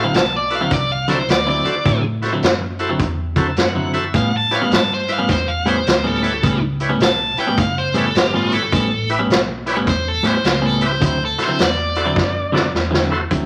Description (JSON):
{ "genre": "electric blues shuffle", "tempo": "105 BPM", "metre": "4/4", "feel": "swing 64% on 8ths", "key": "D mixolydian", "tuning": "A4 = 440 Hz", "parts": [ { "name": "biting overdriven guitar", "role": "melody", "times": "0.0-12.7 s", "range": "F4 to A5", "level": "-23 LUFS", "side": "equal", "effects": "none" }, { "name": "bright tonewheel organ", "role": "accompaniment", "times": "0.0-13.2 s", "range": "E4 to A5", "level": "-27 LUFS", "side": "equal", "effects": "slow rotary speaker, overdrive" }, { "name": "electric guitar at the edge of break-up", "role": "riff", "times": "0.0-13.5 s", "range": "A2 to E4", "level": "-24 LUFS", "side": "equal", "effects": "harmonic tremolo" }, { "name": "vintage muted fingered electric bass", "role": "bass", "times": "0.0-13.5 s", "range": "F#1 to A2", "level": "-27 LUFS", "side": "equal", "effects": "none" }, { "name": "vintage drum kit", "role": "drums", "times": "0.1-13.5 s", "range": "hi-hat, kick drum, snare drum", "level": "-22 LUFS", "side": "equal", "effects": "none" } ], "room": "moderate large studio reverb, RT60 1.1 s", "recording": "vinyl crackle", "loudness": "-18 LUFS", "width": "mono", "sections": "0.0-13.3 A section", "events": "overdriven electric guitar solo 0.0-13.3; tonewheel organ fill 3.0-4.1; drum fill 12.2-13.3", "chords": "0.0 D9; 4.1 A9; 11.0 D9", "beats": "0.14 0.71 1.29 | 1.86 2.43 3.00 3.58 | 4.15 4.72 5.29 5.87 | 6.44 7.01 7.58 8.16 | 8.73 9.30 9.88 10.45 | 11.02 11.59 12.17 12.74 | 13.32" }